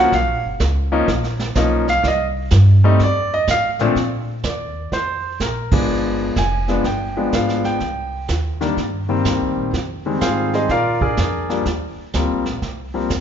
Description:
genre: jazz piano trio.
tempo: 125 BPM.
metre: 4/4.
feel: swing 66% on 8ths.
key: Bb major.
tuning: A4 = 439 Hz.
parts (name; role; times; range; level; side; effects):
clear concert grand piano; melody; 0.0-13.1 s; Bb2 to Ab5; -19 LUFS; left 1 dB; none.
upright bass; bass; 0.0-13.2 s; F1 to Bb2; -20 LUFS; equal; none.
vintage brush drum kit; drums; 0.1-13.2 s; brushed snare drum, hi-hat, kick drum, ride cymbal, snare drum; -24 LUFS; right 3 dB; none.
room: wet recital hall reverb, RT60 1.4 s.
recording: recorded in a church or concert hall, nothing above 7.5 kHz.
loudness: -16 LUFS.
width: side -8 dB against mid.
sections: 0.0-4.0 A section; 4.0-13.2 B section.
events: grand piano solo 0.0-4.0; band accent 5.6.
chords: 0.1 Bmaj9#11; 2.0 Cm; 3.0 F; 4.0 Bbadd9; 5.9 G7b9; 7.8 Cm7; 9.7 Fm7; 10.7 Bb7; 11.7 Eb69.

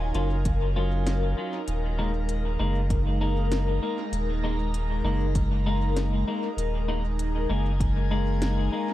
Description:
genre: ambient dub.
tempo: 98 BPM.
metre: 4/4.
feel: straight.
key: unclear.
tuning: A4 = 439 Hz.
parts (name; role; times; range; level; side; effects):
airy breathy pad; sustained chords; 0.0-8.9 s; Ab3 to Bb5; -32 LUFS; left 1 dB; chorus, phaser.
warm sub bass; bass; 0.0-8.7 s; Eb1 to Gb1; -26 LUFS; equal; none.
clean electric guitar; stabs; 0.1-8.9 s; Gb3 to F4; -32 LUFS; left 2 dB; dub echo.
organic electronic drum kit; drums; 0.1-8.5 s; hi-hat, snare drum; -37 LUFS; equal; overdrive, studio reverb, dub echo.
electronic kick drum; drums; 0.5-7.9 s; none; -28 LUFS; equal; overdrive, studio reverb.
room: little or no reverb.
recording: echo-heavy mix.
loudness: -24 LUFS.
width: side -14 dB against mid.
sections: 0.0-8.9 A section.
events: none.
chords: 0.0 Ebm9; 1.7 Absus2/Eb.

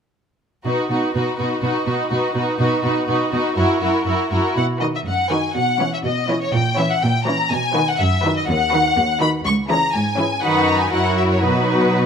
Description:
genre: quick classical-period movement for symphony orchestra.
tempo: 123 BPM.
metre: 2/4.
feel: straight.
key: B major.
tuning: A4 = 440 Hz.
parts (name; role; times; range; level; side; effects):
rich studio violin section; second line; 0.6-12.1 s; E4 to C#5; -23 LUFS; left 1 dB; none.
rich studio viola section; accompaniment; 0.6-12.1 s; D#3 to E4; -22 LUFS; right 1 dB; none.
clear studio cello section; bass; 0.6-12.1 s; C#2 to B2; -23 LUFS; right 2 dB; none.
rich studio violin section; melody; 0.7-11.9 s; A#4 to C#6; -21 LUFS; left 3 dB; none.
room: light reverb.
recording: close, detailed microphones.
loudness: -16 LUFS.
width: side -7 dB against mid.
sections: 0.7-4.6 A section; 4.6-12.1 B section.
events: none.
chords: 0.7 B; 3.6 F#7; 4.6 B; 5.6 C#m7/B; 6.5 A#dim; 7.5 B; 8.5 B/D#; 9.4 C#m; 10.4 B/F#; 10.9 F#7; 11.4 B.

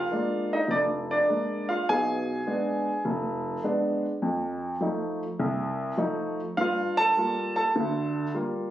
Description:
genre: solo jazz.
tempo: 102 BPM.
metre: 4/4.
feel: swing 67% on 8ths.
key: unclear.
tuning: A4 = 443 Hz.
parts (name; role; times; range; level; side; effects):
warm baby grand piano; solo; 0.0-8.7 s; F1 to A5; -25 LUFS; equal; none.
room: light reverb.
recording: recorded on a phone in the room, club reverb, compression.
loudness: -25 LUFS.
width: side -12 dB against mid.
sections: 0.0-8.7 A section.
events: none.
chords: 0.0 Bb7; 1.9 Bdim7; 4.2 F7; 6.6 Gm7.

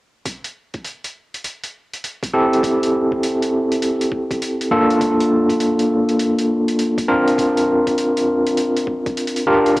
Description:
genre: glitch hop.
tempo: 101 BPM.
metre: 4/4.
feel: swing 64% on 16ths.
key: unclear.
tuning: A4 = 440 Hz.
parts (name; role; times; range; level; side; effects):
electronic hi-hat; drums; 0.3-9.8 s; none; -29 LUFS; equal; cassette tape.
electronic kick drum; drums; 0.3-9.8 s; none; -29 LUFS; equal; high-pass filter on kick, cassette tape.
overdriven tine electric piano; stabs; 2.3-9.8 s; Bb3 to Bb4; -15 LUFS; equal; fast tremolo, sidechain pumping, low-pass filter, cassette tape, analog delay.
room: wet spring reverb, RT60 1.7 s, digital ambience.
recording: home recording on cassette.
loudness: -16 LUFS.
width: side -20 dB against mid.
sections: 0.3-9.8 A section.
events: filter sweep on tine electric piano 0.3-9.8.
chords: 0.3 C6; 2.6 Am7; 5.0 Bbmaj7; 7.4 C9sus4.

